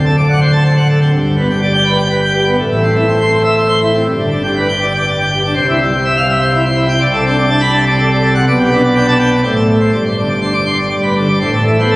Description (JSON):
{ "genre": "classical, organ toccata", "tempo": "123 BPM", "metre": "3/4", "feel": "straight", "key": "unclear", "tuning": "A4 = 440 Hz", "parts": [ { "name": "pipe organ, plenum", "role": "solo", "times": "0.0-12.0 s", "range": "D1 to D6", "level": "-10 LUFS", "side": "equal", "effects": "none" } ], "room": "wet church reverb, RT60 3.8 s", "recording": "recorded on a phone in the room, studio reverb", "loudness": "-10 LUFS", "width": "side -22 dB against mid", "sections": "0.0-5.6 A section; 5.6-12.0 B section", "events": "none", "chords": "0.0 D7; 1.1 G; 2.6 Am; 4.1 G; 5.6 C; 7.0 D7/C; 8.5 G/B; 9.4 Am; 9.9 Gsus4; 10.9 G; 11.4 Am", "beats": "0.17 0.65 | 1.13 1.61 2.09 | 2.58 3.07 3.56 | 4.06 4.56 5.06 | 5.56 6.06 6.54 | 7.03 7.51 7.99 | 8.47 8.95 9.44 | 9.93 10.42 10.91 | 11.41 11.90" }